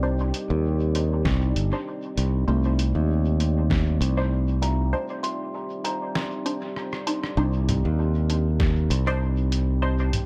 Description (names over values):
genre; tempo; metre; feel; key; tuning
ambient dub; 98 BPM; 4/4; swing 55% on 16ths; C dorian; A4 = 439 Hz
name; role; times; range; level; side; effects
deep dark ambient pad; sustained chords; 0.0-10.3 s; C4 to D5; -36 LUFS; equal; chorus, built-in reverb
filtered dub chord stab; stabs; 0.0-10.0 s; D4 to C5; -35 LUFS; equal; phaser, subtle chorus, dub echo
modern bright fingered electric bass; bass; 0.0-10.1 s; G1 to Eb2; -24 LUFS; equal; tube saturation
lo-fi sampler-style drum kit; drums; 0.3-10.3 s; congas, hi-hat, rim click, snare drum; -33 LUFS; equal; dub echo
electronic kick drum; drums; 1.2-3.8, 8.6-8.7 s; none; -28 LUFS; equal; none
kalimba; arpeggios; 2.5-8.3 s; A3 to C6; -36 LUFS; equal; dub echo
room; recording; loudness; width
little or no reverb; echo-heavy mix; -24 LUFS; mono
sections
0.0-7.4 A section; 7.4-10.3 B section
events
filter sweep on kalimba 0.0-7.4; break 4.9-7.4; drum fill 6.8-7.4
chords
0.0 Cmadd9